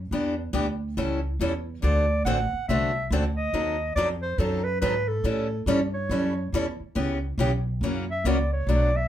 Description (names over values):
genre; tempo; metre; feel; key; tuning
acoustic string swing (jazz manouche); 140 BPM; 4/4; swing 63% on 8ths; A mixolydian; A4 = 440 Hz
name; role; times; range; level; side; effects
upright bass; bass; 0.0-9.1 s; A1 to A2; -27 LUFS; equal; none
picked steel-string acoustic guitar; accompaniment; 0.1-8.9 s; B2 to A4; -27 LUFS; left 1 dB; none
breathy clarinet; melody; 1.8-9.1 s; A4 to F#5; -27 LUFS; equal; none
room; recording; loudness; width
wet small room reverb, RT60 0.5 s; heard from further back in the room; -23 LUFS; side -11 dB against mid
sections
0.0-9.1 A section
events
none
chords
0.1 Em7; 1.0 A7; 1.8 D7; 3.5 D#dim7; 5.2 A7; 7.0 C#m7b5; 7.8 F#7